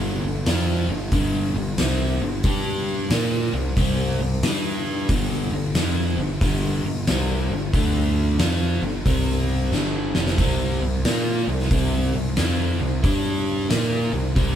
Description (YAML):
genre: blues rock power trio and southern rock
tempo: 91 BPM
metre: 4/4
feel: swing 64% on 8ths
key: unclear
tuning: A4 = 438 Hz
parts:
  - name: crunchy overdriven guitar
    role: riff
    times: 0.0-14.6 s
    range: F2 to Bb4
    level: -25 LUFS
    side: equal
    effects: none
  - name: fuzz picked electric bass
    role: bass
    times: 0.0-14.6 s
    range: F1 to Bb2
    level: -25 LUFS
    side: equal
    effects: overdrive
  - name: oversized low-tuned drum kit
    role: drums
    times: 0.5-14.6 s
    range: hi-hat, kick drum, snare drum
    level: -24 LUFS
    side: equal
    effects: none
room: light reverb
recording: band playing live in one room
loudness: -20 LUFS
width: side -10 dB against mid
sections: 0.0-14.6 A section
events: drum fill 9.7-10.4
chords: 0.0 G5; 3.1 C5; 4.4 G5; 7.7 D5; 8.4 G5; 9.1 C5; 9.7 G5; 10.4 C5; 13.0 G5; 13.7 C5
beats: 0.47 1.13 1.79 | 2.45 3.11 3.77 4.44 | 5.10 5.76 6.42 7.08 | 7.75 8.41 9.07 9.73 | 10.39 11.06 11.72 12.38 | 13.04 13.71 14.37